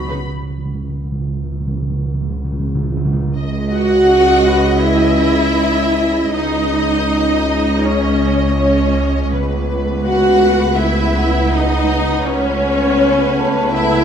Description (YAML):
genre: cinematic, suspense film score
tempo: 81 BPM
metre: 4/4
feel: straight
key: C# minor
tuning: A4 = 441 Hz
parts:
  - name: rich studio violin section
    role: melody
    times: 0.0-14.0 s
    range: B4 to B5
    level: -26 LUFS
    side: left 4 dB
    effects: none
  - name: mellow French horn section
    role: sustained chords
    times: 0.0-14.0 s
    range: F#3 to C#4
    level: -22 LUFS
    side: left 4 dB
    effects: none
  - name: deep rumbling drone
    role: drone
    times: 0.0-14.0 s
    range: C#2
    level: -25 LUFS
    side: right 1 dB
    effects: built-in reverb, phaser
  - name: timpani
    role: percussion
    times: 0.0-3.4, 9.3-10.4 s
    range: C#3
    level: -22 LUFS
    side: right 2 dB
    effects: none
  - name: rich studio violin section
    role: second line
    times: 0.1-14.0 s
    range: B4 to F#5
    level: -21 LUFS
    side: left 4 dB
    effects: none
  - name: rich studio viola section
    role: accompaniment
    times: 0.1-14.0 s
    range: C#4 to F#4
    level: -16 LUFS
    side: right 1 dB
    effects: none
  - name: rich studio cello section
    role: bass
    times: 0.1-14.0 s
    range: C#2 to C#3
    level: -23 LUFS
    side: right 3 dB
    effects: none
  - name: rich studio double bass section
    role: bass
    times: 3.4-14.0 s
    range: C#2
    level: -22 LUFS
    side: right 3 dB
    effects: none
  - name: vibraphone with medium hard mallets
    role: texture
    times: 4.5-14.0 s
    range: A4 to D#6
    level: -27 LUFS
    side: right 2 dB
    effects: none
room: wet scoring stage reverb, RT60 1.8 s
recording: none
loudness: -13 LUFS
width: side -8 dB against mid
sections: 0.0-3.4 A section; 3.4-14.0 B section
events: timpani fill 0.0-3.4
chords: 0.0 N.C.; 3.4 C#madd9; 9.3 Aadd9/C#